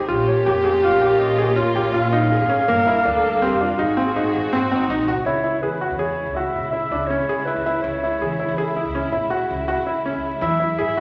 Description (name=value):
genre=contemporary instrumental, chamber music in an uneven meter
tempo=163 BPM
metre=7/4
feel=straight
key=unclear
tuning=A4 = 440 Hz
part: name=dark viola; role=second line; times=0.0-5.1, 10.4-11.0 s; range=B#3 to Bb4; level=-24 LUFS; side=equal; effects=none
part: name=dark symphonic string section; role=sustained chords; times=0.0-11.0 s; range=C#3 to F#4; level=-30 LUFS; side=equal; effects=none
part: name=bright baby grand piano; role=arpeggios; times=0.1-11.0 s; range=Bb3 to G#4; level=-25 LUFS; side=equal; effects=none
part: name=upright bass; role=bass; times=0.1-10.9 s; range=E#1 to C#3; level=-31 LUFS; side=equal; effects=none
part: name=dark clarinet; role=melody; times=0.3-11.0 s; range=G#4 to E#5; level=-26 LUFS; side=equal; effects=none
room=wet recital hall reverb, RT60 1.3 s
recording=none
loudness=-20 LUFS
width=mono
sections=0.0-5.3 A section; 5.3-11.0 B section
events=none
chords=0.1 A#m; 2.7 Gm; 3.8 G#7; 5.3 C#m; 10.4 Eadd9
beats=| 0.09 0.46 0.83 1.20 1.57 1.94 2.31 | 2.68 3.05 3.42 3.79 4.16 4.53 4.90 | 5.26 5.63 6.00 6.37 6.74 7.11 7.48 | 7.84 8.21 8.58 8.95 9.31 9.68 10.05 | 10.42 10.79